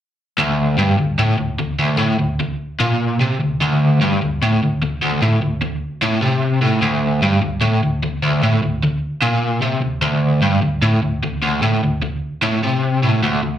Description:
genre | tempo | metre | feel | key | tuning
rock | 150 BPM | 4/4 | straight | unclear | A4 = 440 Hz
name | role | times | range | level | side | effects
overdriven electric guitar | solo | 0.4-13.6 s | D2 to C3 | -16 LUFS | equal | tremolo, slapback echo
room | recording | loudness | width
moderate club reverb, RT60 0.7 s | live gig heard through the venue's PA, club reverb | -16 LUFS | side -10 dB against mid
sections
0.4-13.2 A section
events
none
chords
none

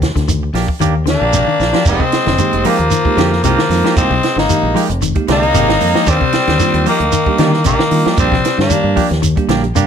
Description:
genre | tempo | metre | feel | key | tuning
afrobeat | 114 BPM | 4/4 | straight | F dorian | A4 = 440 Hz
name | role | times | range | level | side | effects
clean electric guitar | arpeggios | 0.0-9.8 s | C3 to F3 | -20 LUFS | left 11 dB | none
semi-hollow electric guitar | stabs | 0.0-9.9 s | Ab3 to G4 | -21 LUFS | right 8 dB | none
fingered electric bass | bass | 0.0-9.9 s | F1 to Eb3 | -18 LUFS | equal | none
compact cocktail drum kit | drums | 0.0-9.9 s | crash cymbal, hi-hat, kick drum, snare drum | -19 LUFS | right 2 dB | none
shekere | percussion | 0.0-9.9 s | none | -19 LUFS | right 2 dB | none
raspy tenor saxophone | melody | 1.1-9.1 s | Bb3 to Eb4 | -16 LUFS | left 3 dB | none
raspy tenor saxophone | second line | 1.1-9.1 s | Eb3 to Bb3 | -21 LUFS | right 7 dB | none
bell-like tine electric piano | accompaniment | 2.4-9.7 s | G3 to Bb4 | -21 LUFS | right 8 dB | none
room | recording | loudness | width
light reverb | none | -11 LUFS | side -8 dB against mid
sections
0.0-1.9 A section; 1.9-9.9 B section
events
drum fill 1.6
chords
0.0 Ebmaj7; 1.9 Fm11; 6.1 Ebmaj7

